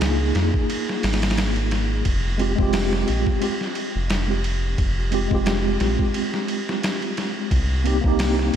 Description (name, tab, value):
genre	trip hop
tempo	88 BPM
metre	4/4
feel	swing 55% on 16ths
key	F minor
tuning	A4 = 439 Hz
part	mellow tine electric piano	accompaniment	0.0-8.6 s	Ab3 to Ab4	-24 LUFS	right 1 dB	medium stereo tremolo, tape echo
part	round analog bass	bass	0.0-8.6 s	F1 to F2	-23 LUFS	equal	none
part	trip hop sampler-style drum kit	drums	0.0-8.6 s	hi-hat, kick drum, ride cymbal, snare drum	-24 LUFS	equal	none
room	moderate huge ambient reverb, RT60 4.1 s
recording	dreamy mix soaked in reverb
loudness	-20 LUFS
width	side -9 dB against mid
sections	0.0-8.6 A section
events	none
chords	0.0 Db6; 2.1 Fmadd9; 7.5 Cm7